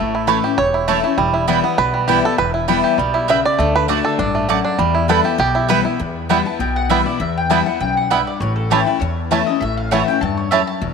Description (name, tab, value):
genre	bluegrass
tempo	199 BPM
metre	4/4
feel	swing 53% on 8ths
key	E dorian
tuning	A4 = 442 Hz
part	bluegrass banjo	melody	0.0-10.6 s	D3 to E5	-19 LUFS	right 4 dB	none
part	picked steel-string acoustic guitar	accompaniment	0.0-10.9 s	E2 to F#4	-20 LUFS	left 12 dB	none
part	upright bass	bass	0.0-10.9 s	E1 to E2	-24 LUFS	equal	none
part	mandolin	stabs	0.3-10.6 s	A3 to A5	-22 LUFS	right 12 dB	none
part	mandolin	melody	6.5-10.8 s	G4 to A5	-22 LUFS	left 4 dB	none
room	moderate plate reverb, RT60 3.0 s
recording	1960s-style stereo with parts hard left and right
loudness	-15 LUFS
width	side -5 dB against mid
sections	0.0-6.0 A section; 6.0-10.9 B section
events	five-string banjo solo 0.0-6.0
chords	0.0 A; 1.2 Em; 3.6 D; 4.8 Em; 8.4 A